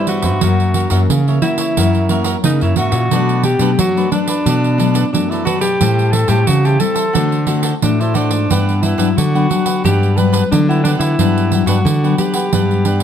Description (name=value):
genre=samba and choro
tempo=89 BPM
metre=4/4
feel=straight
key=G major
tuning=A4 = 444 Hz
part: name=breathy alto saxophone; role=melody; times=0.0-13.0 s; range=D4 to B4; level=-19 LUFS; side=left 1 dB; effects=none
part: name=cavaquinho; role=accompaniment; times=0.0-13.0 s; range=D4 to A5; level=-24 LUFS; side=right 3 dB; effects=none
part: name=nylon-string guitar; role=accompaniment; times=0.0-13.0 s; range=F#2 to F#4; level=-20 LUFS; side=left 6 dB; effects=none
part: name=nylon-string guitar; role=bass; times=0.0-13.0 s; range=F#2 to G3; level=-16 LUFS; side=equal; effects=none
part: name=pandeiro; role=percussion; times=0.1-13.0 s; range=none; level=-20 LUFS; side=right 8 dB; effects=none
room=light reverb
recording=close, detailed microphones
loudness=-12 LUFS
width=side -8 dB against mid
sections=0.0-13.0 A section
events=none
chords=0.4 F#7; 3.1 Bm7; 5.8 Am7; 7.2 D7; 8.5 Gmaj7